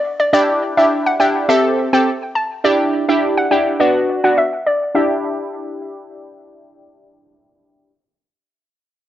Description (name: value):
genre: dancehall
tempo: 104 BPM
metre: 4/4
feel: straight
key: E minor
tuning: A4 = 440 Hz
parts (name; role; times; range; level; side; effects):
- hollow square pluck; melody; 0.2-6.6 s; D5 to A5; -17 LUFS; equal; chorus, cassette tape, tape echo
- synth brass stab; accompaniment; 0.3-7.9 s; B3 to A4; -16 LUFS; equal; chorus, phaser, cassette tape
room: moderate spring reverb, RT60 1.3 s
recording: home recording on cassette, low-pass filter, nothing above 7.9 kHz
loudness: -14 LUFS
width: side -12 dB against mid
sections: 0.3-5.0 A section; 5.0-7.3 B section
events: none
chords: 0.3 Em7; 1.5 Am7; 2.6 Em7; 3.8 Bm; 5.0 Em7